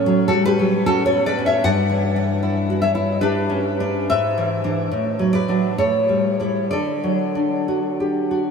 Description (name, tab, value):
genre	romantic piece for solo classical guitar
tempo	62-78 BPM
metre	3/4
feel	rubato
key	D major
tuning	A4 = 444 Hz
part	nylon-string guitar	solo	0.0-8.5 s	G2 to F#5	-17 LUFS	equal	lush chorus, analog delay
room	wet huge ambient reverb, RT60 7.2 s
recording	dreamy mix soaked in reverb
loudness	-17 LUFS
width	side -6 dB against mid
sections	0.0-8.5 A section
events	none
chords	0.0 F#m/A; 1.7 Em7/G; 4.1 E7/G#; 4.9 D/A; 5.8 A7; 6.7 D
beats	0.07 0.87 | 1.66 2.44 3.22 | 4.11 4.93 5.80 | 6.73 7.69